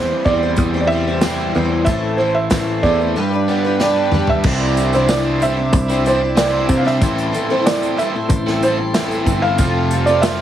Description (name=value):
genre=folk rock and heartland rock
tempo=93 BPM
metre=4/4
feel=straight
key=unclear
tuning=A4 = 441 Hz
part: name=felt-muted upright piano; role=melody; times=0.0-10.4 s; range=C5 to F5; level=-20 LUFS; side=right 2 dB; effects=none
part: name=picked twelve-string acoustic guitar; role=accompaniment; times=0.0-10.4 s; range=A2 to C5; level=-22 LUFS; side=left 3 dB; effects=analog chorus
part: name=bright tonewheel organ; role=sustained chords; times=0.0-10.4 s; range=E3 to D6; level=-28 LUFS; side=right 2 dB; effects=wide subtle chorus
part: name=crunchy overdriven guitar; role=riff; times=0.0-10.4 s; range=F2 to F4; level=-21 LUFS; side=right 1 dB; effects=none
part: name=picked electric bass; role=bass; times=0.0-10.4 s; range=F1 to C3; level=-20 LUFS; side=equal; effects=none
part: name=unplugged drum kit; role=drums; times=0.3-10.4 s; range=crash cymbal, hi-hat, kick drum, snare drum, toms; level=-20 LUFS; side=equal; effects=none
part: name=tambourine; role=percussion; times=1.2-10.4 s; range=none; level=-37 LUFS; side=right 4 dB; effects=none
room=light reverb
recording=heavily compressed radio sound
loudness=-14 LUFS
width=side -10 dB against mid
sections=0.0-4.4 A section; 4.4-10.4 B section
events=drum fill 3.8-4.4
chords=0.0 C/E; 1.9 Am; 3.2 G; 4.4 Cadd9; 7.0 Am7; 9.6 Fadd9